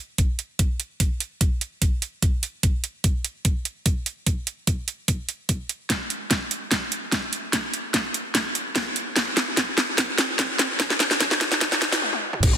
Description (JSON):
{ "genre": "heavy wobble dubstep", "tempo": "147 BPM", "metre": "4/4", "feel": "half-time", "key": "unclear", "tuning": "A4 = 440 Hz", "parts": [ { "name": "dubstep drum kit", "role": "drums", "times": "0.2-12.5 s", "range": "crash cymbal, hi-hat, snare drum, toms", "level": "-22 LUFS", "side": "right 1 dB", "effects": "none" }, { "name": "electronic kick drum", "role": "drums", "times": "0.2-12.5 s", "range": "none", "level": "-23 LUFS", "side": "equal", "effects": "none" }, { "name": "growl bass", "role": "bass", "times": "12.4-12.6 s", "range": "G1", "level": "-27 LUFS", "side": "left 1 dB", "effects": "chorus, overdrive" } ], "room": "moderate lush hall reverb, RT60 1.9 s", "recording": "dense, heavily limited modern master, high-pass filter", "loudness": "-22 LUFS", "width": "side -9 dB against mid", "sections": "0.0-12.4 A section", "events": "build-up 0.0-12.4; filter sweep 0.0-12.4; drum fill 5.9-12.0, 12.0-12.4; stop 12.0-12.4", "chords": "none" }